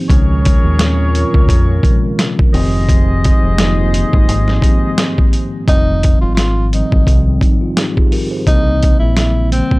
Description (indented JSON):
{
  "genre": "hip hop, boom-bap hip-hop",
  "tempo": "86 BPM",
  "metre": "4/4",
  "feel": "swing 56% on 16ths",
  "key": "F minor",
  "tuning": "A4 = 440 Hz",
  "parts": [
    { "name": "mellow tine electric piano", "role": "accompaniment", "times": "0.0-9.8 s", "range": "G2 to C5", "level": "-19 LUFS", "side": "equal", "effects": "medium stereo tremolo, cassette tape, high-pass filter, low-pass filter" },
    { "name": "dark analog pad", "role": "sustained chords", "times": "0.0-5.7 s", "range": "Bb2 to Bb4", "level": "-24 LUFS", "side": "equal", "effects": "chorus, phaser, high-pass filter, low-pass filter" },
    { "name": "clear saxophone section", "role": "stabs", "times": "0.1-5.3 s", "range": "Ab4 to Eb5", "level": "-22 LUFS", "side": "left 1 dB", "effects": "high-pass filter, low-pass filter, analog delay" },
    { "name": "deep dub fingered electric bass", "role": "bass", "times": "0.1-9.8 s", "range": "F1 to F2", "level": "-15 LUFS", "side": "equal", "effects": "tube saturation" },
    { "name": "boom bap sampler-style drum kit", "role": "drums", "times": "0.1-9.8 s", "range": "hi-hat, kick drum, snare drum", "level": "-13 LUFS", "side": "equal", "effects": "none" },
    { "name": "breathy tenor saxophone", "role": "melody", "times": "5.7-9.8 s", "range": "C4 to F4", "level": "-20 LUFS", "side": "equal", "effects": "high-pass filter, low-pass filter, analog delay" }
  ],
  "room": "little or no reverb",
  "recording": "dry, gritty hardware recording",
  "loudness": "-10 LUFS",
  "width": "side -22 dB against mid",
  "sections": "0.0-5.7 A section; 5.7-9.8 B section",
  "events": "none",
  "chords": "0.1 Db6; 2.5 Fm7; 8.5 C7b9"
}